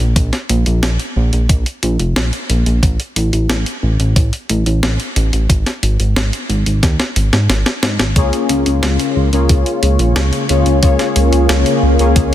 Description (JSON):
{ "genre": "synthwave", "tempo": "90 BPM", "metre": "4/4", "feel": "straight", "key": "unclear", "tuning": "A4 = 439 Hz", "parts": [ { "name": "chorused synth bass", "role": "bass", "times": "0.0-12.3 s", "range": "F1 to Ab2", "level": "-14 LUFS", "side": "equal", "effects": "sidechain pumping" }, { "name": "clean 12-bit digital drum machine", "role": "drums", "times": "0.2-12.3 s", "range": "hi-hat, snare drum", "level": "-19 LUFS", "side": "equal", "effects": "high-pass filter on hats, high-pass filter on snare" }, { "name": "electronic kick drum", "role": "drums", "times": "0.2-12.3 s", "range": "none", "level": "-14 LUFS", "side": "equal", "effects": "none" }, { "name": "lush unison pad", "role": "sustained chords", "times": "8.2-12.3 s", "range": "Db3 to F4", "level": "-19 LUFS", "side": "right 1 dB", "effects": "chorus, sidechain pumping" }, { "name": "analog synth brass", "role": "stabs", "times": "8.2-12.3 s", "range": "Bb3 to Db5", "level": "-17 LUFS", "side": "left 5 dB", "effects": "chorus, ping-pong delay" } ], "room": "light reverb, digital ambience", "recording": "dense, heavily limited modern master", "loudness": "-12 LUFS", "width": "side -12 dB against mid", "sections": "0.0-8.2 A section; 8.2-12.3 B section", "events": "drum fill 6.8-8.2; filter sweep on analog synth pad 8.2-12.3; filter sweep on analog polysynth 8.2-12.3", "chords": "0.0 Bb5; 2.8 N.C.; 5.5 Ab5; 8.2 Db6" }